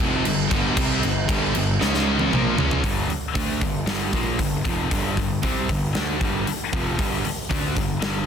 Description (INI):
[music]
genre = hard rock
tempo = 116 BPM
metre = 4/4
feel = straight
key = G minor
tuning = A4 = 439 Hz
[part]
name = crunchy overdriven guitar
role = riff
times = 0.0-8.3 s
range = F2 to D4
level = -27 LUFS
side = right 10 dB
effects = none
[part]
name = scooped high-gain guitar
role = riff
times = 0.0-8.3 s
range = F2 to D4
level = -27 LUFS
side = left 9 dB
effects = distortion
[part]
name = scooped high-gain guitar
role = riff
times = 0.0-2.8 s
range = F2 to C#4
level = -27 LUFS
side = left 1 dB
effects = distortion
[part]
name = fuzz picked electric bass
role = bass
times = 0.0-8.3 s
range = F1 to D2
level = -28 LUFS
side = equal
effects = overdrive
[part]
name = huge arena drum kit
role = drums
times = 0.0-8.1 s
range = crash cymbal, hi-hat, kick drum, snare drum, toms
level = -25 LUFS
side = equal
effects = none
[sound]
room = light reverb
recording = dense, heavily limited modern master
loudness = -20 LUFS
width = side -7 dB against mid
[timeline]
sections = 0.0-2.8 A section; 2.8-8.3 B section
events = drum fill 1.8-2.8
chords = 0.0 G5; 1.8 C#5; 2.3 Bbm7; 2.8 Gm